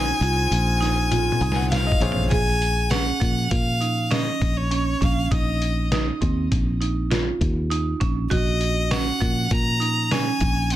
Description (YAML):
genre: progressive instrumental, band music in an uneven meter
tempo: 100 BPM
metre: 5/4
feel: straight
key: Bb minor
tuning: A4 = 440 Hz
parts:
  - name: clear violin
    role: melody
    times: 0.0-10.8 s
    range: Db5 to Bb5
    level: -25 LUFS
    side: left 2 dB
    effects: tape echo
  - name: bright concert grand piano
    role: accompaniment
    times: 0.0-2.3 s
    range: C3 to Ab5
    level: -31 LUFS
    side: left 6 dB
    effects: none
  - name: marimba with hard mallets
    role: arpeggios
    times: 0.0-10.8 s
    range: F3 to Ab4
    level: -27 LUFS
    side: right 6 dB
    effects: none
  - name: fingered electric bass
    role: bass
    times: 0.0-10.8 s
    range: Bb1 to Bb2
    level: -24 LUFS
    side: equal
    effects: none
  - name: trip hop sampler-style drum kit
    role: drums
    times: 0.2-10.8 s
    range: hi-hat, kick drum, snare drum, toms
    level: -25 LUFS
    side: equal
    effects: none
room: light reverb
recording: dense, heavily limited modern master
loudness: -19 LUFS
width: side -13 dB against mid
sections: 0.0-2.3 A section; 2.3-10.8 B section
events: drum fill 1.1-2.3; grand piano fill 1.1-2.3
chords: 0.0 Fm/Bb; 2.3 Bbm7; 5.3 Bbsus4; 8.3 Gb6/Bb